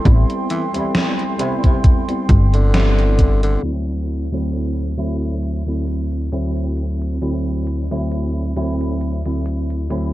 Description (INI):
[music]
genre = vaporwave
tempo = 67 BPM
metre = 4/4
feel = swing 55% on 16ths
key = unclear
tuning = A4 = 442 Hz
[part]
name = tine electric piano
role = accompaniment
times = 0.0-10.1 s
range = D2 to E4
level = -20 LUFS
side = equal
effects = ensemble chorus
[part]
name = warbly tape-like pad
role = sustained chords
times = 0.0-10.1 s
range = C4 to C6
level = -31 LUFS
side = right 3 dB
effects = chorus, built-in reverb, vintage 12-bit sampler grit
[part]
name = slap-like FM bass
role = bass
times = 0.1-3.6 s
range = G1 to A1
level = -14 LUFS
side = equal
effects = tube saturation
[part]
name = electronic kick drum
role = drums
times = 0.1-3.4 s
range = none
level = -13 LUFS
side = equal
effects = none
[part]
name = gated 80s digital drum machine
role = drums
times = 0.1-10.1 s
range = hi-hat, snare drum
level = -23 LUFS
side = equal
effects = gated reverb, gated reverb snare
[part]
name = growling tenor saxophone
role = melody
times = 0.5-3.6 s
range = C3 to E3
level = -27 LUFS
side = left 1 dB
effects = tape echo
[sound]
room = little or no reverb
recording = cassette tape, low-pass filter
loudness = -16 LUFS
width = side -16 dB against mid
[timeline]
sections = 0.0-3.6 A section; 3.6-10.1 B section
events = band accent 2.7-3.2; filter sweep 3.6-10.1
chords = 0.0 Am7; 3.6 D9